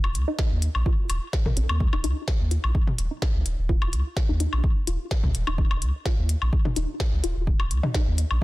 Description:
minimal techno; 127 BPM; 4/4; straight; A4 = 440 Hz
saturated sub bass; bass; 0.0-8.4 s; Eb1 to Eb2; -24 LUFS; equal; sidechain pumping
electronic woodblock and toms; percussion; 0.0-8.4 s; -31 LUFS; left 2 dB; digital delay
minimal click drum kit; drums; 0.1-8.3 s; hi-hat, snare drum; -32 LUFS; left 1 dB
resonant blip pluck; riff; 0.3-8.4 s; Db4 to Bb4; -34 LUFS; left 2 dB; phaser, sidechain pumping, digital delay
electronic kick drum; drums; 0.4-8.4 s; -24 LUFS; equal
digital ambience; dense, heavily limited modern master; -22 LUFS; side -19 dB against mid
0.0-8.4 A section
0.0 Eb5

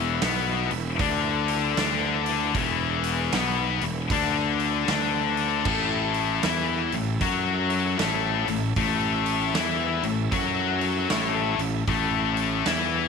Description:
blues rock power trio and southern rock; 77 BPM; 4/4; swing 63% on 8ths; A4 = 439 Hz
bright tonewheel organ; sustained chords; 0.0-13.1 s; E4 to E5; -36 LUFS; right 13 dB; slow rotary speaker, chorus vibrato
tight distorted guitar; riff; 0.0-13.1 s; E2 to F#4; -24 LUFS; left 10 dB; distortion
fuzz fingered electric bass; bass; 0.0-13.1 s; E1 to F#2; -28 LUFS; right 3 dB; overdrive
big rock drum kit; drums; 0.2-12.9 s; crash cymbal, hi-hat, kick drum, snare drum; -31 LUFS; right 3 dB
light reverb, studio ambience; 1960s-style stereo with parts hard left and right; -22 LUFS; side -5 dB against mid
0.0-13.1 A section
0.0 E5; 5.7 A5

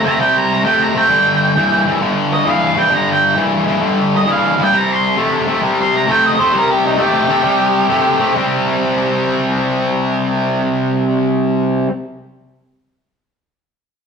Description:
rock; 133 BPM; 4/4; swing 68% on 8ths; C mixolydian; A4 = 439 Hz
octave-fuzz lead guitar; melody; 0.0-8.3 s; Eb4 to C6; -15 LUFS; right 1 dB; distortion
sludgy distorted guitar; riff; 0.0-11.9 s; G2 to C4; -14 LUFS; left 1 dB; overdrive
wet stone room reverb, RT60 1.2 s; rough rehearsal-room recording; -12 LUFS; side -6 dB against mid
0.0-8.4 A section; 8.4-12.0 B section
0.0 C5; 1.1 G5; 4.7 C5

